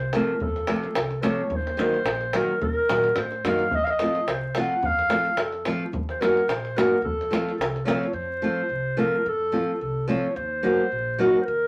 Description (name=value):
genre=balkan folk, Balkan wedding band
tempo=108 BPM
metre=2/4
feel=swing 55% on 16ths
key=F phrygian dominant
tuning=A4 = 440 Hz
part: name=dark clarinet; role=melody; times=0.0-11.7 s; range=A4 to Gb5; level=-28 LUFS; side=equal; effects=none
part: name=upright bass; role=bass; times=0.0-11.7 s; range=Bb1 to Bb2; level=-37 LUFS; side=equal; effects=none
part: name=davul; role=percussion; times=0.0-8.1 s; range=none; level=-31 LUFS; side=equal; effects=none
part: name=nylon-string guitar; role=accompaniment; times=0.1-11.4 s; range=C3 to Gb4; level=-27 LUFS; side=equal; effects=none
room=wet studio reverb, RT60 0.5 s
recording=vinyl crackle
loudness=-24 LUFS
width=mono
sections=0.0-8.2 A section; 8.2-11.7 A section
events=none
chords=0.0 F; 1.5 Ebm; 3.7 F; 5.9 Ebm; 7.0 F; 10.4 Ebm